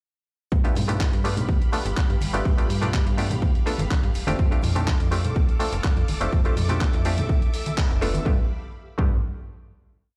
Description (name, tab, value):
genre	filtered disco house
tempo	124 BPM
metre	4/4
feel	straight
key	G mixolydian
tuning	A4 = 440 Hz
part	string machine, full ensemble	sustained chords	0.5-8.5 s	G4 to D6	-38 LUFS	equal	ensemble chorus, sidechain pumping
part	slap-like FM bass	bass	0.5-9.2 s	F1 to G2	-28 LUFS	equal	tube saturation, sidechain pumping
part	electronic kick drum	drums	0.5-9.1 s	none	-24 LUFS	equal	overdrive
part	egg shaker and congas	percussion	0.5-8.2 s	none	-34 LUFS	equal	sidechain pumping on perc
part	muted clav	accompaniment	0.6-9.2 s	A3 to A4	-31 LUFS	equal	phaser, sidechain pumping
part	dusty soul sampler-style drum kit	drums	0.6-8.2 s	handclaps, hi-hat	-35 LUFS	equal	sidechain pumping on hats
room	little or no reverb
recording	played on a big sound system in a bare room, stone room reverb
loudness	-23 LUFS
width	mono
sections	0.5-8.3 drop; 8.3-10.2 final chord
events	drop 0.5-8.3; band accent 7.8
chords	0.5 G7; 4.1 F6; 8.3 G7